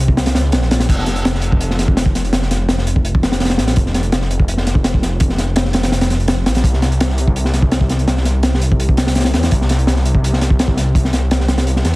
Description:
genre	drum and bass, jungle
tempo	167 BPM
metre	4/4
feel	straight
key	unclear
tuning	A4 = 440 Hz
part	detuned saw bass	bass	0.0-12.0 s	F1 to E2	-16 LUFS	equal	none
part	crunchy breakbeat drum kit	drums	0.1-11.9 s	crash cymbal, hi-hat, kick drum, snare drum	-15 LUFS	equal	none
room	little or no reverb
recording	dense, heavily limited modern master, vinyl crackle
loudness	-13 LUFS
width	side -21 dB against mid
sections	0.9-12.0 A section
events	drop 0.9-12.0; kick drops out 11.7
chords	none

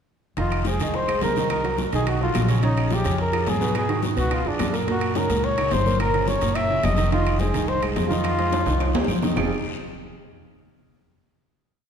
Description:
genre	Afro-Cuban jazz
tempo	214 BPM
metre	4/4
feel	straight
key	F minor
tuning	A4 = 440 Hz
part	warm flugelhorn	melody	0.4-9.0 s	D4 to E5	-25 LUFS	left 1 dB	none
part	warm baby grand piano	accompaniment	0.4-9.5 s	Bb2 to Eb5	-27 LUFS	right 3 dB	none
part	upright bass	bass	0.4-9.5 s	F1 to Ab2	-25 LUFS	equal	none
part	bongos	percussion	0.4-9.4 s	none	-34 LUFS	left 6 dB	none
part	congas	percussion	0.4-9.4 s	none	-33 LUFS	left 4 dB	none
part	guiro	percussion	0.4-9.4 s	none	-38 LUFS	left 5 dB	none
part	timbales	percussion	0.4-9.4 s	none	-31 LUFS	right 3 dB	none
part	claves	percussion	0.5-9.4 s	none	-39 LUFS	right 6 dB	none
room	wet scoring stage reverb, RT60 2.0 s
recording	recorded in a church or concert hall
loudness	-20 LUFS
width	side -7 dB against mid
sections	0.4-9.4 A section; 9.4-10.5 final chord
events	drum fill 8.5-9.4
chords	0.4 Fm7; 1.5 Cm7b5; 2.1 B7#11; 2.6 Bbm7; 3.8 Abm7; 4.3 Db7b9; 4.9 Gb6; 6.0 Gm7b5; 6.6 Gb6; 7.1 Fm7; 9.4 Fm9

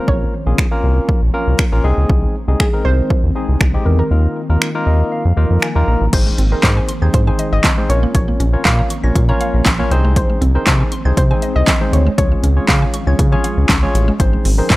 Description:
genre	dance-pop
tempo	119 BPM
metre	4/4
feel	straight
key	Ab major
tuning	A4 = 440 Hz
part	soft round pluck	melody	0.0-14.8 s	Ab4 to F5	-24 LUFS	equal	chorus
part	barky tine electric piano	accompaniment	0.0-14.8 s	Ab3 to Bb5	-22 LUFS	left 1 dB	medium stereo tremolo, sidechain pumping
part	ethereal airy pad	sustained chords	0.0-14.8 s	Eb3 to Db4	-26 LUFS	left 1 dB	ensemble chorus, built-in reverb, sidechain pumping
part	round analog bass	bass	0.1-14.8 s	Ab1 to Db3	-14 LUFS	equal	sidechain pumping
part	deep house drum kit	drums	0.1-14.8 s	crash cymbal, finger snaps, handclaps, hi-hat, kick drum, snare drum	-16 LUFS	equal	overdrive
part	mallet-like synth pluck	arpeggios	6.1-14.8 s	Eb3 to Bb6	-27 LUFS	right 1 dB	chorus, sidechain pumping, analog delay
room	little or no reverb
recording	dry, gritty hardware recording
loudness	-12 LUFS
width	side -19 dB against mid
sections	0.0-6.1 A section; 6.1-14.8 B section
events	kick muted 4.1-6.1; tine electric piano fill 4.6-6.1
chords	0.0 Bbm; 1.8 Ab/C; 4.1 Ebsus2; 6.1 Ab; 7.9 Bbm; 9.9 Ab/C; 12.2 Db; 14.2 Ab

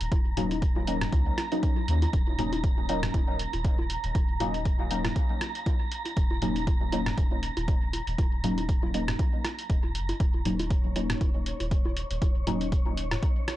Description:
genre	dub techno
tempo	119 BPM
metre	4/4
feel	swing 56% on 16ths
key	Eb minor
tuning	A4 = 440 Hz
part	soft dub sub bass	bass	0.0-13.2 s	Eb1 to Eb2	-32 LUFS	equal	sidechain pumping
part	lo-fi sampler-style drum kit	drums	0.0-13.6 s	hi-hat, rim click	-36 LUFS	equal	none
part	wind-like tuned noise texture	texture	0.0-13.6 s	Db5 to Bb5	-38 LUFS	right 3 dB	built-in reverb, sidechain pumping
part	electronic kick drum	drums	0.1-13.3 s	none	-26 LUFS	equal	none
part	electronic bongos and toms	percussion	0.1-13.6 s	none	-37 LUFS	equal	overdrive, sidechain pumping on perc, sidechain pumping on toms, dub echo
part	deep mellow chord stab	stabs	0.4-12.6 s	Gb3 to Eb4	-32 LUFS	left 2 dB	chorus, phaser, sidechain pumping, dub echo
room	little or no reverb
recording	dry, gritty hardware recording, nothing above 10.7 kHz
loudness	-25 LUFS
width	side -14 dB against mid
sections	0.0-13.6 A section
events	none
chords	0.0 Ebm7

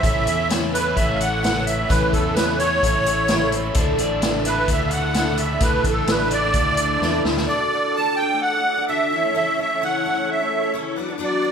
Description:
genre	folk rock and heartland rock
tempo	129 BPM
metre	4/4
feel	straight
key	D major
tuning	A4 = 440 Hz
part	musette accordion	melody	0.0-11.5 s	A4 to A5	-21 LUFS	right 2 dB	none
part	picked twelve-string acoustic guitar	accompaniment	0.0-11.5 s	A2 to F#4	-26 LUFS	left 2 dB	none
part	warm baby grand piano	accompaniment	0.0-7.4 s	E4 to E5	-34 LUFS	right 2 dB	none
part	bright tonewheel organ	sustained chords	0.0-11.5 s	C#4 to E6	-33 LUFS	equal	slow rotary speaker, chorus vibrato
part	overdriven electric guitar	riff	0.0-7.5 s	A2 to E4	-29 LUFS	equal	none
part	fingered electric bass	bass	0.0-7.5 s	A1 to E2	-26 LUFS	left 1 dB	none
part	vintage drum kit	drums	0.0-7.5 s	hi-hat, kick drum, snare drum	-23 LUFS	equal	none
part	electric slide guitar	second line	3.3-4.3 s	A4 to D5	-28 LUFS	equal	none
room	moderate large studio reverb, RT60 1.2 s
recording	band playing live in one room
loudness	-18 LUFS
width	side -7 dB against mid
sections	0.0-7.5 A section; 7.5-11.5 B section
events	accordion solo 0.0-7.5; drum fill 7.0-7.5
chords	0.0 A; 3.8 Dsus2; 7.5 D; 9.1 A/C#; 11.0 Bm

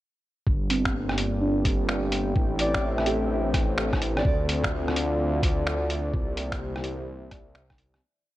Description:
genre	future garage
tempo	127 BPM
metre	4/4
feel	swing 64% on 16ths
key	G dorian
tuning	A4 = 438 Hz
part	dark analog pad	sustained chords	0.5-8.0 s	Bb3 to G5	-31 LUFS	left 1 dB	chorus, sidechain pumping
part	swelling detuned saw bass	bass	0.5-8.0 s	G1 to D2	-28 LUFS	equal	sidechain pumping
part	electronic kick drum	drums	0.5-7.8 s	none	-27 LUFS	equal	none
part	muted felt-like synth keys	accompaniment	0.7-4.4, 7.3-8.2 s	C4 to D5	-31 LUFS	right 2 dB	chorus, sidechain pumping, analog delay
part	lo-fi sampler-style drum kit	drums	0.7-8.0 s	finger snaps, hi-hat, rim click	-30 LUFS	equal	none
part	breathy flute-like synth lead	melody	2.6-4.3 s	D5	-33 LUFS	equal	chorus, analog delay
room	light reverb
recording	cassette tape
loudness	-23 LUFS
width	side -15 dB against mid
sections	0.5-8.0 groove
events	fade-out 5.5-8.0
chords	0.5 Gmadd9; 2.4 Am7; 4.2 Dm7; 6.1 C7

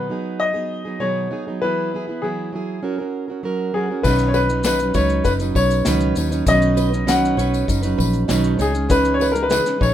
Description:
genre	acoustic pop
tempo	99 BPM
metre	4/4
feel	straight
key	B major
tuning	A4 = 440 Hz
part	bright upright piano	melody	0.0-9.9 s	G#4 to F#5	-21 LUFS	left 3 dB	none
part	fingerpicked plugged-in steel-string acoustic guitar	accompaniment	0.0-9.9 s	B2 to B4	-22 LUFS	right 4 dB	none
part	vintage muted fingered electric bass	bass	4.0-9.9 s	F#1 to D#2	-22 LUFS	left 1 dB	none
part	vintage brush drum kit	drums	4.0-9.9 s	crash cymbal, kick drum, shaker, snare drum	-24 LUFS	left 1 dB	none
part	tambourine	percussion	4.0-9.9 s	none	-32 LUFS	left 7 dB	none
part	nylon-string guitar	arpeggios	4.3-9.9 s	B4 to D#5	-30 LUFS	right 6 dB	none
room	light reverb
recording	minimal, uncompressed stereo recording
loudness	-17 LUFS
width	side -11 dB against mid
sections	0.0-4.0 A section; 4.0-9.9 B section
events	none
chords	0.0 G#m7/B; 1.6 Eadd9; 2.8 F#; 4.0 Badd9; 8.6 C#madd9

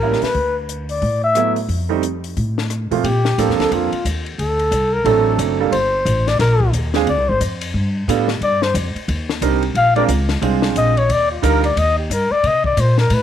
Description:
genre	jazz, small-group swing and bop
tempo	179 BPM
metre	4/4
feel	swing 62% on 8ths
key	Bb major from 3.0 s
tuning	A4 = 440 Hz
part	trumpet with bucket mute	melody	0.0-13.2 s	F4 to F5	-18 LUFS	left 3 dB	none
part	clear baby grand piano	accompaniment	0.0-11.6 s	Bb2 to C5	-20 LUFS	right 12 dB	none
part	upright bass	bass	0.0-13.2 s	F#1 to C3	-20 LUFS	equal	none
part	compact cocktail drum kit	drums	0.1-13.2 s	hi-hat, kick drum, ride cymbal, rim click, snare drum	-26 LUFS	left 5 dB	none
room	light reverb, small room ambience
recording	1960s-style stereo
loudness	-15 LUFS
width	side -10 dB against mid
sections	0.0-3.0 A section; 3.0-13.2 B section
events	none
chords	0.3 D69; 1.7 F; 3.0 Bbmaj7; 4.4 D7; 5.7 Gm7; 7.1 Dm7b5; 7.7 G7; 8.4 Cm9; 9.7 Bb7; 11.1 Ebmaj7; 12.4 Bbadd9

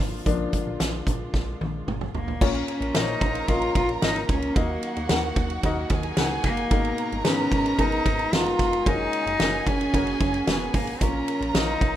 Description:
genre	piano-driven pop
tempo	112 BPM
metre	4/4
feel	straight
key	unclear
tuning	A4 = 443 Hz
part	clear upright piano	accompaniment	0.0-12.0 s	Ab2 to Gb5	-30 LUFS	left 5 dB	none
part	dark studio string section	sustained chords	0.0-12.0 s	Cb3 to Gb4	-38 LUFS	right 3 dB	none
part	plucky analog bass	bass	0.0-12.0 s	F1 to Eb2	-31 LUFS	equal	none
part	loose indie drum kit	drums	0.3-11.9 s	crash cymbal, hi-hat, kick drum, ride cymbal, snare drum, toms	-25 LUFS	equal	none
part	warm cello	melody	2.2-12.0 s	Bb3 to F4	-26 LUFS	left 1 dB	none
part	warm studio violin section	second line	2.4-12.0 s	Gb4 to Bb5	-32 LUFS	right 4 dB	tape echo
room	small room reverb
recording	rough home demo mix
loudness	-22 LUFS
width	side -12 dB against mid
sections	0.0-2.4 A section; 2.4-12.0 B section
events	upright piano solo 0.0-2.4; drum fill 1.3-2.4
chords	0.0 Bb; 2.4 Bbm; 4.6 Ebm; 6.7 Abmadd9; 8.9 Gbadd9; 11.0 Bbm

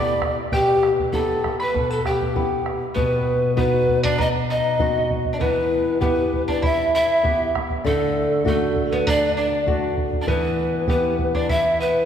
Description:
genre	andean folk, Andean ensemble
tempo	98 BPM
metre	4/4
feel	straight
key	E minor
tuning	A4 = 440 Hz
part	breathy polished pan flute	melody	0.0-12.1 s	G4 to E5	-21 LUFS	left 1 dB	none
part	mandolin	second line	0.0-12.1 s	A3 to D6	-28 LUFS	right 2 dB	none
part	flamenco guitar	accompaniment	0.0-12.1 s	B2 to G4	-24 LUFS	left 2 dB	none
part	bombo	percussion	0.2-11.6 s	none	-27 LUFS	right 2 dB	none
room	wet church reverb, RT60 2.8 s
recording	recorded in a church or concert hall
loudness	-18 LUFS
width	side -8 dB against mid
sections	0.0-3.0 A section; 3.0-12.1 B section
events	none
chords	0.0 Em; 3.0 B; 5.4 Em; 7.8 D; 10.3 Em

